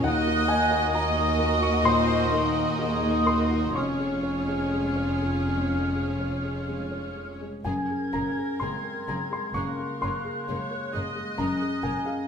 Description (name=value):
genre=cinematic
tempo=63 BPM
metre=4/4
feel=uneven beats, rubato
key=unclear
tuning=A4 = 440 Hz
part: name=dark studio violin section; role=melody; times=0.0-11.9 s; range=Bb4 to Eb5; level=-34 LUFS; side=left 3 dB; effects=none
part: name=bright large flute ensemble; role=second line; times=0.0-12.0 s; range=Eb6 to Ab6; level=-33 LUFS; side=right 1 dB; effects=none
part: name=dark studio violin section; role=second line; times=0.0-11.9 s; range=Db4 to Bb4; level=-35 LUFS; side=right 2 dB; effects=none
part: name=mellow clarinet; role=second line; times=0.0-12.3 s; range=Bb3 to Gb4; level=-31 LUFS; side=left 1 dB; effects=none
part: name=felt-muted upright piano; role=accompaniment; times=0.0-12.3 s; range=Eb2 to Db6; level=-30 LUFS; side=left 2 dB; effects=none
part: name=rich studio viola section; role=accompaniment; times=0.0-12.3 s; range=F4 to Eb5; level=-34 LUFS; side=right 2 dB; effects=none
part: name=dark studio double bass section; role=bass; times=0.0-11.9 s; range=F1 to Eb2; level=-33 LUFS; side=right 1 dB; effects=none
part: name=warm studio cello section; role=bass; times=0.0-11.9 s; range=Eb2 to Gb2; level=-31 LUFS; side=equal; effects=none
room=wet stone room reverb, RT60 1.2 s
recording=none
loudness=-24 LUFS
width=side -7 dB against mid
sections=0.0-12.3 A section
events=none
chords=0.0 Ebm; 3.8 Db/F; 7.6 Gbadd9